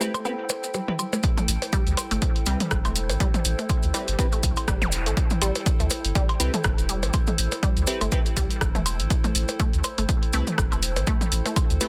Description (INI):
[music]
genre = minimal techno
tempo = 122 BPM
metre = 4/4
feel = swing 56% on 16ths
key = A minor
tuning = A4 = 440 Hz
[part]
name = resonant blip pluck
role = riff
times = 0.0-11.9 s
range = G3 to B3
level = -35 LUFS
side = equal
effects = phaser, sidechain pumping, digital delay
[part]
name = wavetable chord stab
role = stabs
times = 0.0-11.9 s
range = C4 to B4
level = -36 LUFS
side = equal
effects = cassette tape, dub echo
[part]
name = maracas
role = percussion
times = 0.0-11.9 s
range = none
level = -35 LUFS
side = equal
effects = none
[part]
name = warbly tape-like pad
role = texture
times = 0.0-11.9 s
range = E4 to G5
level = -37 LUFS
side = equal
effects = chorus, built-in reverb, phaser, sidechain pumping
[part]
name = punchy analog drum machine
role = drums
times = 0.1-11.9 s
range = hi-hat, rim click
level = -32 LUFS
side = equal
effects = low-pass filter on hats, soft clipping on snare, low-pass filter on snare, low-pass filter on room
[part]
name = electronic percussion blips and toms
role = percussion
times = 0.1-11.9 s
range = none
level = -33 LUFS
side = equal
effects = none
[part]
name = electronic kick drum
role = drums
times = 1.2-11.7 s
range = none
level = -26 LUFS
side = equal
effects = none
[part]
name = saturated sub bass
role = bass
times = 1.5-11.8 s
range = E1 to D2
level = -29 LUFS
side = equal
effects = sidechain pumping
[part]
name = zap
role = sound effects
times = 4.8-4.9 s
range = none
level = -33 LUFS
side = equal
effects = none
[sound]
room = digital ambience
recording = dense, heavily limited modern master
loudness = -24 LUFS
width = mono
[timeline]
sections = 0.0-1.2 A section; 1.2-11.9 B section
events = filter sweep on synth pluck 0.0-1.2; drop 1.2-11.9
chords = 0.0 Am7